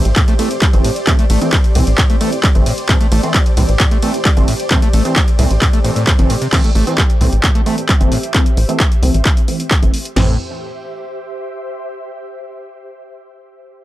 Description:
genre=driving peak-time techno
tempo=132 BPM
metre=4/4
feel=straight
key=A minor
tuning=A4 = 441 Hz
part: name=rave stab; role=stabs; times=0.0-10.3 s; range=E3 to C4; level=-22 LUFS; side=right 1 dB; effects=chorus, built-in reverb, sidechain pumping, analog delay
part: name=ethereal airy pad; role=texture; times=0.0-11.9 s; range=G4 to E5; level=-26 LUFS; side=equal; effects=ensemble chorus, built-in reverb, sidechain pumping
part: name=tight sequencer bass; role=bass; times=0.1-10.4 s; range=G1 to C2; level=-14 LUFS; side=equal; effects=sidechain pumping
part: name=techno drum kit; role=drums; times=0.1-10.1 s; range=crash cymbal, handclaps, hi-hat, ride cymbal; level=-19 LUFS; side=equal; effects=overdrive, sidechain pumping on hats, sidechain pumping on cymbals
part: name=screaming distorted acid line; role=riff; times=0.2-10.4 s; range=A2 to A3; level=-21 LUFS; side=equal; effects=distortion, wide subtle chorus, sidechain pumping, analog delay
part: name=techno drum kit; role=drums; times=0.2-10.3 s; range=crash cymbal, kick drum, snare drum, toms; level=-13 LUFS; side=equal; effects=overdrive
room=little or no reverb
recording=dry, gritty hardware recording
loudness=-11 LUFS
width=side -15 dB against mid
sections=0.0-6.5 A section; 6.5-10.2 B section; 10.2-12.0 C section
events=drop 0.0-6.5; fade-out on ambient pad 6.5-10.2; filter sweep on synth stab 6.5-10.2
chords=0.0 Am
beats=0.16 0.62 | 1.07 1.53 1.98 2.44 | 2.89 3.34 3.80 4.25 | 4.71 5.16 5.62 6.07 | 6.53 6.98 7.43 7.89 | 8.34 8.80 9.25 9.71 | 10.16 10.62 11.07 11.53

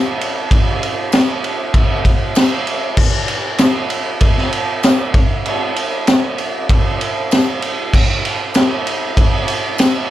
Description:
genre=rock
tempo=97 BPM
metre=4/4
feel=straight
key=none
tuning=none
part: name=raw garage drum kit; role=drums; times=0.2-9.9 s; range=crash cymbal, kick drum, ride cymbal, snare drum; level=-14 LUFS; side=equal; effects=none
part: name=tambourine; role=percussion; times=1.1-9.9 s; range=none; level=-30 LUFS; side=left 6 dB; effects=none
room=light reverb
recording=dark, warm production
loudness=-14 LUFS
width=side -13 dB against mid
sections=0.0-10.1 A section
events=none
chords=none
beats=| 0.51 1.12 1.74 2.36 | 2.98 3.60 4.21 4.83 | 5.45 6.07 6.69 7.31 | 7.93 8.55 9.17 9.79

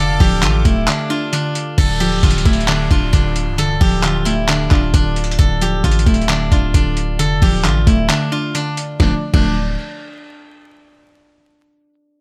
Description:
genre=hip hop, trap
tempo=133 BPM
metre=4/4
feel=half-time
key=D minor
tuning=A4 = 442 Hz
part: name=steel-string zither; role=melody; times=0.0-9.5 s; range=D4 to A4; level=-24 LUFS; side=equal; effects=digital delay
part: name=soft round pluck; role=accompaniment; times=0.0-9.5 s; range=D3 to D4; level=-22 LUFS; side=equal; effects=chorus
part: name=sweeping resonant pad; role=sustained chords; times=0.0-1.7 s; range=A4 to D6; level=-33 LUFS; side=equal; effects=chorus
part: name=hard-hitting 808-style bass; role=bass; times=0.0-9.8 s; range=C1 to A1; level=-20 LUFS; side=equal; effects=none
part: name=lo-fi sampler-style drum kit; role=drums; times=0.2-9.4 s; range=crash cymbal, handclaps, hi-hat, kick drum, snare drum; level=-19 LUFS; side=equal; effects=overdrive
part: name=downlifter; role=sound effects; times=1.8-5.4 s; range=none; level=-32 LUFS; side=equal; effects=none
room=digital ambience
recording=vinyl crackle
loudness=-16 LUFS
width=mono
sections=0.0-1.8 A section; 1.8-9.0 B section; 9.0-10.8 C section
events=break 0.9-1.8, 8.1-9.0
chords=0.0 Dm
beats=0.43 0.88 1.33 | 1.78 2.23 2.68 3.13 | 3.58 4.04 4.49 4.94 | 5.39 5.84 6.29 6.74 | 7.19 7.64 8.10 8.55 | 9.00 9.45

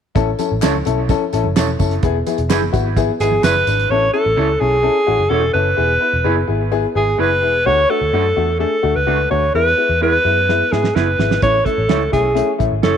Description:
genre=uptempo 1960s-style soul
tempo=128 BPM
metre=4/4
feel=straight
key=A major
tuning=A4 = 441 Hz
part: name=clear upright piano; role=accompaniment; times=0.1-13.0 s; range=G#3 to E5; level=-21 LUFS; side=left 10 dB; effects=none
part: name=vintage muted picked electric bass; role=bass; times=0.2-13.0 s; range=E1 to G#2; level=-20 LUFS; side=right 1 dB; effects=none
part: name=cloth-damped thuddy drum kit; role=drums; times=0.2-3.9, 10.5-12.9 s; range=hi-hat, kick drum, snare drum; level=-20 LUFS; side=right 4 dB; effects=none
part: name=congas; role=percussion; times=0.2-3.7 s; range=none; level=-30 LUFS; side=right 10 dB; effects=none
part: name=tambourine and handclaps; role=percussion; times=0.2-3.8 s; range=none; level=-32 LUFS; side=left 1 dB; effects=none
part: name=electric guitar through a small old amp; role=stabs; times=0.6-12.9 s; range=A3 to C#5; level=-26 LUFS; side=right 12 dB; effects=spring reverb, tape echo
part: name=breathy alto saxophone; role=melody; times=3.2-13.0 s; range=G#4 to C#5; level=-16 LUFS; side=right 1 dB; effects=tape echo
room=moderate plate reverb, RT60 1.9 s, small room ambience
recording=1960s-style stereo with parts hard left and right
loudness=-14 LUFS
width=side -8 dB against mid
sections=0.2-3.9 A section; 3.9-13.0 B section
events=drum fill 10.5-11.4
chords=0.2 A; 2.0 E; 3.9 A; 5.8 E; 7.7 D; 9.5 E; 11.4 A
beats=| 0.15 0.62 1.09 1.56 | 2.03 2.50 2.97 3.44 | 3.91 4.38 4.84 5.32 | 5.78 6.25 6.72 7.19 | 7.66 8.13 8.61 9.07 | 9.54 10.02 10.48 10.96 | 11.43 11.89 12.37 12.84

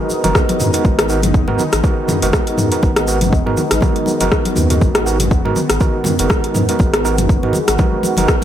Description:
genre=afro house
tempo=121 BPM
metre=4/4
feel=swing 56% on 16ths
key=G# minor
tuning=A4 = 444 Hz
part: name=warm analog pad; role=sustained chords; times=0.0-8.4 s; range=D#3 to F#4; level=-22 LUFS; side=equal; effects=chorus, sidechain pumping
part: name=overdriven tine electric piano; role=stabs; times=0.0-8.4 s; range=B3 to A#4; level=-20 LUFS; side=right 3 dB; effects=fast tremolo, sidechain pumping, low-pass filter, ping-pong delay
part: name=congas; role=percussion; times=0.1-8.4 s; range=none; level=-23 LUFS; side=left 2 dB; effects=none
part: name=tube shaker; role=percussion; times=0.1-8.4 s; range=none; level=-28 LUFS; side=right 1 dB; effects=none
part: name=warm sub bass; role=bass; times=0.2-8.3 s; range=F#1 to G#2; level=-20 LUFS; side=equal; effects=sidechain pumping
part: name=deep house drum kit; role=drums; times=0.2-8.4 s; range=hi-hat, rim click, toms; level=-19 LUFS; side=left 1 dB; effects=overdrive
part: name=electronic kick drum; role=drums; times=0.4-8.4 s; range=none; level=-16 LUFS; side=equal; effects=overdrive
room=light reverb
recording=none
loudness=-13 LUFS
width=side -10 dB against mid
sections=0.0-8.4 A section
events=none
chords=0.0 G#m7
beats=0.35 | 0.85 1.34 1.84 2.33 | 2.83 3.33 3.82 4.32 | 4.81 5.31 5.80 6.30 | 6.80 7.29 7.79 8.28

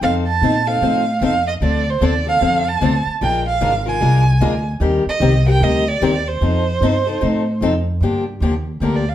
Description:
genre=acoustic string swing (jazz manouche)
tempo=150 BPM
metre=4/4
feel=swing 62% on 8ths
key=unclear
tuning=A4 = 440 Hz
part: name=warm violin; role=melody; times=0.0-9.1 s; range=Bb4 to A5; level=-19 LUFS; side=right 4 dB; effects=none
part: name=picked steel-string acoustic guitar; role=accompaniment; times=0.0-9.0 s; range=D3 to Bb4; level=-20 LUFS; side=left 4 dB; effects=none
part: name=upright bass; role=bass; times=0.0-9.1 s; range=Ab1 to Bb2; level=-18 LUFS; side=equal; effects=none
room=wet studio reverb, RT60 0.7 s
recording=heard from further back in the room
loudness=-15 LUFS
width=side -12 dB against mid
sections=0.0-8.0 A section; 8.0-9.1 B section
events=violin solo 8.0-9.1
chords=0.0 F7; 1.6 Dm7; 3.2 Bb7; 4.8 Eb6; 6.4 F7; 8.0 Gm7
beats=| 0.02 0.42 0.81 1.21 | 1.61 2.01 2.41 2.81 | 3.21 3.61 4.01 4.41 | 4.81 5.21 5.61 6.01 | 6.41 6.81 7.21 7.61 | 8.01 8.40 8.80

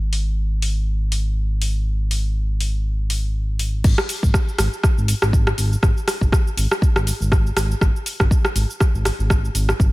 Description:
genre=afro house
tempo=121 BPM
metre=4/4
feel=swing 56% on 16ths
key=unclear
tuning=A4 = 439 Hz
part: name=smooth gliding synth bass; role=bass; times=0.0-9.9 s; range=G#1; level=-20 LUFS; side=equal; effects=sidechain pumping
part: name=afro-pop drum kit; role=drums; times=0.1-9.9 s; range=cabasa, crash cymbal, hi-hat, rim click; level=-23 LUFS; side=equal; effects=studio reverb
part: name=electronic kick drum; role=drums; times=3.8-9.9 s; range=none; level=-17 LUFS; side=equal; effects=studio reverb
room=little or no reverb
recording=none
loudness=-17 LUFS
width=side -20 dB against mid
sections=0.0-3.8 A section; 3.8-9.9 B section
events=drop 3.8-9.9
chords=none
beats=0.37 0.87 1.36 | 1.86 2.36 2.85 3.35 | 3.85 4.34 4.84 5.33 | 5.83 6.32 6.82 7.32 | 7.81 8.31 8.80 9.30 | 9.79

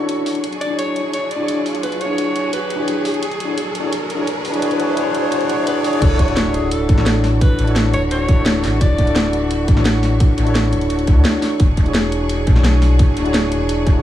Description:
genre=liquid drum and bass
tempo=172 BPM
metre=4/4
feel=straight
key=D lydian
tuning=A4 = 441 Hz
part: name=tine electric piano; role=accompaniment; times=0.0-14.0 s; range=D4 to D5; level=-20 LUFS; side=left 1 dB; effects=medium stereo tremolo, dub echo
part: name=rich symphonic string section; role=sustained chords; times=0.0-14.0 s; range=E3 to C#6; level=-28 LUFS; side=right 1 dB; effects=sidechain pumping, low-pass filter
part: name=sub bass with octave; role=bass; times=0.0-14.0 s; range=D1 to E2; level=-18 LUFS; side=equal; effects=high-pass filter
part: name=riser and sub drop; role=sound effects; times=0.0-7.4 s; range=none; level=-25 LUFS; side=left 1 dB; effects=none
part: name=garage drum kit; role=drums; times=0.1-13.9 s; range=crash cymbal, hi-hat, snare drum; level=-22 LUFS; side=equal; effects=high-pass filter on hats, high-pass filter on cymbals, high-pass filter on snare, high-pass filter on room, dub echo
part: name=breathy alto saxophone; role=melody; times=0.6-9.5 s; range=G#4 to D5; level=-25 LUFS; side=equal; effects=dub echo
part: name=electronic kick drum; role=drums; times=6.0-13.9 s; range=none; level=-14 LUFS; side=equal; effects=none
room=light reverb, digital ambience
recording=echo-heavy mix, studio reverb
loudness=-14 LUFS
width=side -12 dB against mid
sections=0.0-6.0 A section; 6.0-14.0 B section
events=build-up 0.0-6.0; riser 0.0-6.0; drop 6.0-14.0; impact 6.0-7.4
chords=0.4 E13; 6.0 Dmaj9; 11.6 E13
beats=0.09 | 0.44 0.79 1.13 1.48 | 1.83 2.18 2.53 2.88 | 3.23 3.58 3.92 4.27 | 4.62 4.97 5.32 5.67 | 6.02 6.37 6.72 7.06 | 7.41 7.76 8.11 8.46 | 8.81 9.16 9.51 9.86 | 10.20 10.55 10.90 11.25 | 11.60 11.95 12.30 12.65 | 12.99 13.34 13.69

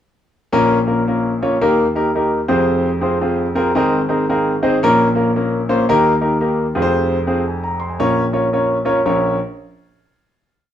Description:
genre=soul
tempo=113 BPM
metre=4/4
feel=swing 63% on 8ths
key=Bb dorian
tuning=A4 = 439 Hz
part: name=warm grand piano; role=solo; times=0.5-9.4 s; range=F1 to C6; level=-14 LUFS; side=equal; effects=none
room=moderate large studio reverb, RT60 0.9 s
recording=band playing live in one room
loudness=-14 LUFS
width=side -10 dB against mid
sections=0.5-9.1 A section; 9.1-10.7 final chord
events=grand piano fill 3.2-4.8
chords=0.5 Bbm; 1.6 Eb; 2.4 Fm; 3.8 Abadd9; 4.8 Bbm; 5.9 Eb; 6.7 Fm; 8.0 Bbm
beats=| 0.54 1.07 1.61 2.15 | 2.68 3.22 3.76 4.29 | 4.83 5.36 5.89 6.42 | 6.95 7.48 8.00 8.53 | 9.06

